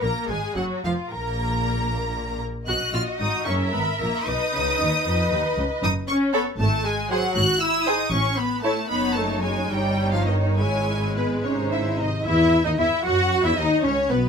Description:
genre	quick classical-period movement for string orchestra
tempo	67-79 BPM (dotted quarters)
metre	6/8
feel	rubato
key	unclear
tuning	A4 = 439 Hz
part	clear symphonic violin section	melody	0.0-14.3 s	B4 to F#6	-28 LUFS	equal	none
part	warm symphonic violin section	second line	0.0-14.2 s	D#4 to F#5	-26 LUFS	equal	none
part	clear symphonic viola section	accompaniment	0.0-14.3 s	D#3 to F#4	-26 LUFS	left 1 dB	none
part	dark symphonic cello section	bass	0.0-14.2 s	F2 to F#4	-27 LUFS	equal	none
part	rich studio double bass section	bass	0.0-14.3 s	F1 to F#2	-27 LUFS	right 1 dB	none
room	moderate studio reverb, RT60 0.9 s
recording	minimal, uncompressed stereo recording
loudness	-20 LUFS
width	side -6 dB against mid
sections	0.0-12.2 A section; 12.2-14.3 B section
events	none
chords	0.3 Fm; 1.1 N.C.; 2.7 B (rootless); 3.5 F#7; 4.3 B; 5.8 Bsus2/F# (rootless); 6.6 G#5; 8.1 A; 8.9 B13/F#; 9.7 D#7/G; 10.6 C#m/G#; 11.4 G#; 12.2 Esus2

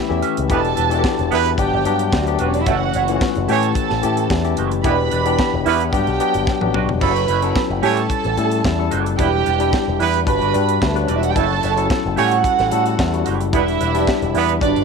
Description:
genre	disco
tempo	110 BPM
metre	4/4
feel	straight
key	E dorian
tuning	A4 = 439 Hz
part	dark studio violin section	second line	0.0-14.8 s	G3 to B5	-22 LUFS	right 12 dB	tape echo
part	tine electric piano	accompaniment	0.0-14.8 s	E3 to B4	-21 LUFS	left 15 dB	medium stereo tremolo
part	clean electric guitar	accompaniment	0.1-14.8 s	A3 to E5	-29 LUFS	right 11 dB	wah, lush chorus
part	picked electric bass with an envelope filter	bass	0.1-14.8 s	E1 to A2	-22 LUFS	equal	none
part	tight funk drum kit	drums	0.2-14.8 s	crash cymbal, hi-hat, kick drum, snare drum, toms	-23 LUFS	equal	none
part	dark horn section	stabs	0.5-14.5 s	F#3 to C#5	-22 LUFS	right 12 dB	none
room	light reverb, small room ambience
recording	1960s-style stereo with parts hard left and right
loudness	-15 LUFS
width	side -5 dB against mid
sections	0.0-14.8 A section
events	drum fill 6.5-7.0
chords	0.5 Em7; 2.7 F#m7; 3.5 A7; 4.8 Em7; 5.9 Gmaj7; 7.0 F#m7; 7.8 A7; 9.2 Em7; 10.3 Gmaj7; 11.4 F#m7; 12.2 A7; 13.5 Em7

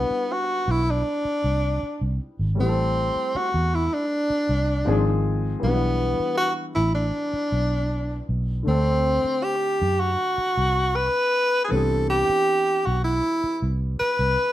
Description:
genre	lush 1970s-style soul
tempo	79 BPM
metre	4/4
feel	straight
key	unclear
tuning	A4 = 439 Hz
part	breathy tenor saxophone	melody	0.0-14.5 s	B3 to B4	-22 LUFS	equal	slapback echo
part	warm baby grand piano	accompaniment	0.0-14.5 s	D3 to B4	-31 LUFS	left 3 dB	none
part	vintage muted fingered electric bass	bass	0.0-14.4 s	Ab1 to F#2	-24 LUFS	equal	none
room	light reverb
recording	rough home demo mix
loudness	-20 LUFS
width	side -14 dB against mid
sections	0.0-14.5 A section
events	none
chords	0.0 Cmaj9; 2.6 Am7; 4.9 Ab6; 5.6 G6; 8.7 D7; 11.7 Cmaj9

